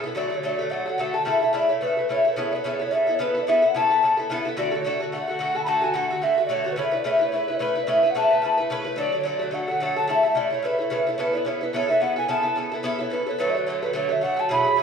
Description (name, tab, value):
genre	celtic folk, Celtic reel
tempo	218 BPM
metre	4/4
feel	swing 57% on 8ths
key	A major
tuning	A4 = 440 Hz
part	Irish bouzouki	accompaniment	0.0-14.8 s	B2 to B4	-24 LUFS	left 1 dB	none
part	alto ocarina	melody	0.2-14.8 s	B4 to B5	-23 LUFS	equal	none
room	wet large studio reverb, RT60 1.3 s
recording	band playing live in one room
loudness	-21 LUFS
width	side -6 dB against mid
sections	0.0-2.4 A section; 2.4-11.2 A section; 11.2-14.8 B section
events	none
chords	0.2 D; 1.3 A; 2.4 Aadd9; 4.6 D; 6.8 Aadd9; 9.0 D; 10.1 A; 11.2 Aadd9; 13.4 D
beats	| 0.16 0.44 0.71 0.99 | 1.27 1.54 1.82 2.10 | 2.37 2.65 2.92 3.20 | 3.47 3.75 4.03 4.30 | 4.58 4.85 5.13 5.40 | 5.68 5.95 6.23 6.50 | 6.78 7.05 7.33 7.61 | 7.88 8.16 8.43 8.71 | 8.98 9.26 9.54 9.81 | 10.09 10.37 10.64 10.92 | 11.19 11.47 11.74 12.02 | 12.29 12.57 12.85 13.12 | 13.40 13.67 13.95 14.22 | 14.50 14.78